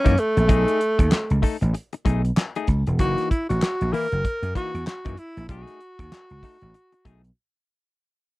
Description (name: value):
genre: funk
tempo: 96 BPM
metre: 4/4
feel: swing 60% on 16ths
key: unclear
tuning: A4 = 439 Hz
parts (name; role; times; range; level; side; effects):
- breathy tenor saxophone; melody; 0.0-7.3 s; A3 to A#4; -25 LUFS; equal; none
- semi-hollow electric guitar; accompaniment; 0.0-7.3 s; E3 to A4; -28 LUFS; left 7 dB; none
- vintage slap bass; bass; 0.1-7.3 s; E1 to F#2; -22 LUFS; equal; none
- cloth-damped thuddy drum kit; drums; 0.1-7.4 s; hi-hat, kick drum, snare drum; -21 LUFS; equal; none
- group handclap; percussion; 1.1-6.3 s; none; -33 LUFS; left 4 dB; none
room: little or no reverb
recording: dry, close 1970s-style studio recording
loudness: -20 LUFS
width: side -19 dB against mid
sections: 0.0-8.0 A section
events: fade-out 0.0-8.0; break 7.4-8.0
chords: 0.5 B13; 3.0 F#6; 5.5 B13